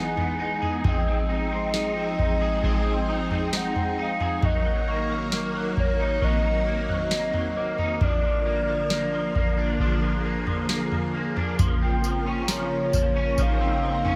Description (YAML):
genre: dream pop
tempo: 67 BPM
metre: 4/4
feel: straight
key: unclear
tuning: A4 = 441 Hz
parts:
  - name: hollow clarinet-like synth lead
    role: melody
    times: 0.0-14.2 s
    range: Db5 to G#5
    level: -31 LUFS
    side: equal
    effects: chorus, digital delay
  - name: string machine, violins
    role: sustained chords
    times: 0.0-14.2 s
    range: Db3 to Bb4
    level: -32 LUFS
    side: equal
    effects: ensemble chorus
  - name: electric guitar at the edge of break-up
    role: arpeggios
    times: 0.0-14.2 s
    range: F3 to G#4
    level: -32 LUFS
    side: equal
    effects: ensemble chorus, digital delay
  - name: booming analog drum machine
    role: drums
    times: 0.2-14.2 s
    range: kick drum, snare drum, tambourine, toms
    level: -28 LUFS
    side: equal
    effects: none
  - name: large celesta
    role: texture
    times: 4.9-14.2 s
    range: Bb5 to F6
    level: -42 LUFS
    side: equal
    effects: digital delay
room: light reverb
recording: none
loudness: -25 LUFS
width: mono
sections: 0.0-11.6 A section; 11.6-14.2 B section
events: none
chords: 0.0 Emaj7; 0.8 Fm7; 4.4 Ebm; 8.0 Bb; 11.6 Bbmadd9